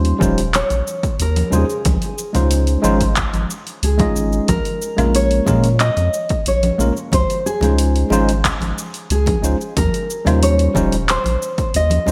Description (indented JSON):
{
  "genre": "sunset chillout",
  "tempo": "91 BPM",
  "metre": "4/4",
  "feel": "straight",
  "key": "Db lydian",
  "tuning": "A4 = 440 Hz",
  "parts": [
    { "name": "nylon-string guitar", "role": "melody", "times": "0.0-12.1 s", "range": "Ab4 to Eb5", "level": "-24 LUFS", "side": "equal", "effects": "digital delay" },
    { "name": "tine electric piano", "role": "accompaniment", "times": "0.0-12.1 s", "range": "G3 to Eb5", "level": "-23 LUFS", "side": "equal", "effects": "digital delay" },
    { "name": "warm sub bass", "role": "bass", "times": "0.0-12.1 s", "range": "Eb1 to Bb2", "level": "-20 LUFS", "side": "equal", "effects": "none" },
    { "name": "deep house drum kit", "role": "drums", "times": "0.0-12.1 s", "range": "cabasa, handclaps, hi-hat, woodblock", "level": "-26 LUFS", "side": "equal", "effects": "overdrive, studio reverb" },
    { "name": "electronic kick drum", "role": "drums", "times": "0.2-11.7 s", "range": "none", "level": "-24 LUFS", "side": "equal", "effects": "overdrive, studio reverb" },
    { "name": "congas", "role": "percussion", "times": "0.2-12.1 s", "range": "none", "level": "-28 LUFS", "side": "equal", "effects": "none" }
  ],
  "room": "light reverb",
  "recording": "bright 1980s-style digital production",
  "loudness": "-17 LUFS",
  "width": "mono",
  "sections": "0.0-12.1 A section",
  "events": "none",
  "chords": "0.0 Eb13; 1.9 Dbmaj9; 4.5 Bbm7; 7.1 Dbmaj9; 9.8 Eb13"
}